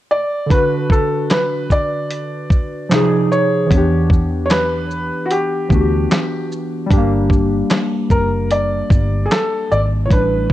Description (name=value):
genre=lo-fi hip hop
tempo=75 BPM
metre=4/4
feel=swing 58% on 16ths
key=unclear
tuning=A4 = 440 Hz
part: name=felt-muted upright piano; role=melody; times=0.1-10.5 s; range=F#4 to D5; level=-20 LUFS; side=equal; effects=none
part: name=warbly lo-fi synth keys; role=accompaniment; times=0.5-10.5 s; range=A2 to B4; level=-19 LUFS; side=equal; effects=chorus, cassette tape
part: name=dusty soul sampler-style drum kit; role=drums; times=0.5-10.5 s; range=handclaps, hi-hat, kick drum, shaker, snare drum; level=-15 LUFS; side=equal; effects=vintage 12-bit sampler grit
part: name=vintage muted fingered electric bass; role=bass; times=3.7-10.5 s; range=F#1 to E2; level=-19 LUFS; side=equal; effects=none
room=little or no reverb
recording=cassette tape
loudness=-14 LUFS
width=side -14 dB against mid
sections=0.5-10.5 A section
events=none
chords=0.0 N.C.; 0.5 D6; 2.9 Fm7; 3.7 Em7; 6.9 Gm